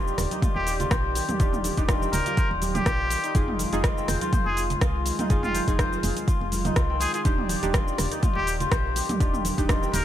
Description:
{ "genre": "afro house", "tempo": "123 BPM", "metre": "4/4", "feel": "swing 54% on 16ths", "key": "unclear", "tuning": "A4 = 440 Hz", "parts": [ { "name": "warm analog pad", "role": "sustained chords", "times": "0.0-10.0 s", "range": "Eb3 to D5", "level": "-34 LUFS", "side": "equal", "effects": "chorus, sidechain pumping" }, { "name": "kora", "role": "arpeggios", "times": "0.0-10.0 s", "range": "C4 to C5", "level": "-30 LUFS", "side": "left 4 dB", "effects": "sidechain pumping, dub echo" }, { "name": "deep mellow chord stab", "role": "stabs", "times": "0.0-10.0 s", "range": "D4 to Ab4", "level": "-34 LUFS", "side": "right 2 dB", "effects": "chorus, sidechain pumping, dub echo" }, { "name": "woody FM bass", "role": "bass", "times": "0.0-10.0 s", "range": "Eb1 to C2", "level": "-30 LUFS", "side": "equal", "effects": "tube saturation, sidechain pumping" }, { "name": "deep house drum kit", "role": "drums", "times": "0.1-10.0 s", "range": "hi-hat, rim click, shaker, toms", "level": "-30 LUFS", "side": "right 1 dB", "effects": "overdrive" }, { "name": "congas", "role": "percussion", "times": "0.2-10.0 s", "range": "none", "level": "-34 LUFS", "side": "right 4 dB", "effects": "none" }, { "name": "electronic kick drum", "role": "drums", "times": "0.4-9.8 s", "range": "none", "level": "-24 LUFS", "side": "equal", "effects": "none" }, { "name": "trumpet with straight mute", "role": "melody", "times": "0.6-10.0 s", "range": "F4 to Bb4", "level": "-32 LUFS", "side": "equal", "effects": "vintage 12-bit sampler grit, dub echo" } ], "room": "little or no reverb", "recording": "none", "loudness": "-22 LUFS", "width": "side -11 dB against mid", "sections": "0.0-10.0 A section", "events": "none", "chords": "0.0 Ebmaj7; 3.4 Fm7; 7.3 Ebmaj7" }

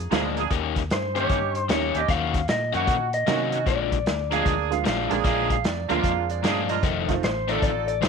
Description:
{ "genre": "electric blues shuffle", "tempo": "152 BPM", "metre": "4/4", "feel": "swing 64% on 8ths", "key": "Bb mixolydian", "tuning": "A4 = 439 Hz", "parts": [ { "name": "fingered electric bass", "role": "bass", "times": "0.0-8.1 s", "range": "F1 to C3", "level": "-30 LUFS", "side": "equal", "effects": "none" }, { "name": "honky-tonk upright piano", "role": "accompaniment", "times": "0.1-7.2 s", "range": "Eb3 to F4", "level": "-31 LUFS", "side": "right 14 dB", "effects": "none" }, { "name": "overdriven semi-hollow guitar", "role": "riff", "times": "0.1-8.1 s", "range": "F2 to G4", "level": "-28 LUFS", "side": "left 15 dB", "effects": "none" }, { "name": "clear horn section", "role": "stabs", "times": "0.1-7.9 s", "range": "Bb3 to A4", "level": "-29 LUFS", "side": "right 14 dB", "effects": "none" }, { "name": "vintage drum kit", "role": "drums", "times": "0.1-8.1 s", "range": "hi-hat, kick drum, snare drum", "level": "-27 LUFS", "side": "equal", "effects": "none" }, { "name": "electric guitar through a small old amp", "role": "melody", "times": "0.9-4.3, 7.2-8.1 s", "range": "C5 to Gb5", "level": "-26 LUFS", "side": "left 3 dB", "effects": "none" }, { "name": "clean lap steel guitar", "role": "second line", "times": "4.3-7.1 s", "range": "D5 to F5", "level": "-30 LUFS", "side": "right 16 dB", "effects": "none" } ], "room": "studio ambience", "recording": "1960s-style stereo with parts hard left and right", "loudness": "-21 LUFS", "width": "side -5 dB against mid", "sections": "0.0-8.1 A section", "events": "none", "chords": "0.0 Bb7; 0.5 Eb7; 2.1 Ebm7; 3.7 Bb7; 6.8 F7" }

